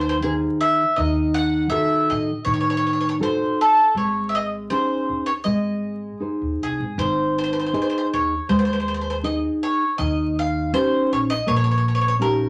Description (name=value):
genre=italian folk, Italian serenade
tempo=80 BPM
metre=4/4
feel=rubato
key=unclear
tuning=A4 = 437 Hz
part: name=bowl-back mandolin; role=melody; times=0.0-12.5 s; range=G#4 to F#5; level=-24 LUFS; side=equal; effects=none
part: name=nylon-string guitar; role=accompaniment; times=0.0-12.5 s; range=D#3 to D#5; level=-25 LUFS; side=equal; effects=none
part: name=upright bass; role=bass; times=0.0-12.4 s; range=G#1 to A2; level=-30 LUFS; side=equal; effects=none
room=wet studio reverb, RT60 0.6 s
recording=vinyl crackle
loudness=-21 LUFS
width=mono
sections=0.0-12.5 A section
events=none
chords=0.0 G#; 1.0 D#dim; 4.0 G#sus4; 5.5 G#; 10.0 D#7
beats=0.23 | 0.97 1.71 2.45 3.21 | 3.95 4.70 5.45 6.22 | 6.98 7.74 8.48 9.23 | 9.98 10.73 11.46 12.20